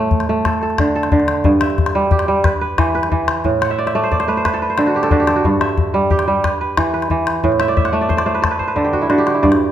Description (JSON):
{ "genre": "west african traditional, West African string and xylophone music", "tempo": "120 BPM (dotted quarters)", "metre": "12/8", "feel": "straight", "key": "unclear", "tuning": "A4 = 440 Hz", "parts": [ { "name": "kora", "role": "arpeggios", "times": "0.0-9.7 s", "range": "G2 to F#5", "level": "-15 LUFS", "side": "right 2 dB", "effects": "none" }, { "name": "calabash", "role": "percussion", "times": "0.1-9.6 s", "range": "none", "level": "-19 LUFS", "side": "left 3 dB", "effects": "none" } ], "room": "moderate recital hall reverb, RT60 1.4 s", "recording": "none", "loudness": "-14 LUFS", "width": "side -11 dB against mid", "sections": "0.0-9.4 A section", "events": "kora fill 3.6-5.4, 7.6-9.4; drum fill 8.6-9.4", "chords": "0.5 D5; 1.5 Em/G; 2.5 Em; 3.4 N.C.; 5.4 Emadd9/G; 6.4 Em; 7.4 N.C.", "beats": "0.45 0.95 | 1.45 1.95 2.45 2.95 | 3.45 3.95 4.45 4.95 | 5.45 5.94 6.44 6.94 | 7.44 7.94 8.44 8.93 | 9.43" }